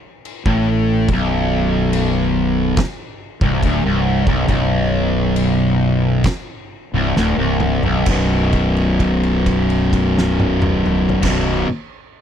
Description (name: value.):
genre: stoner and doom metal.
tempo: 64-71 BPM.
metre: 4/4.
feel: straight.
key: unclear.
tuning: A4 = 443 Hz.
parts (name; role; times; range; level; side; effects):
oversized low-tuned drum kit; drums; 0.2-11.5 s; crash cymbal, kick drum, snare drum, toms; -23 LUFS; equal; none.
fuzz guitar; riff; 0.5-11.7 s; B1 to B2; -16 LUFS; equal; distortion.
fuzz fingered electric bass; bass; 0.5-11.6 s; B0 to A1; -21 LUFS; equal; overdrive.
room: little or no reverb.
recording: dry, close 1970s-style studio recording.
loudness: -15 LUFS.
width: side -9 dB against mid.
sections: 0.0-8.1 A section; 8.1-11.8 B section.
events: slowing down 1.1-8.1; drum fill 7.2-8.1; held note 8.1-11.2.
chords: 0.0 N.C.; 8.1 B5.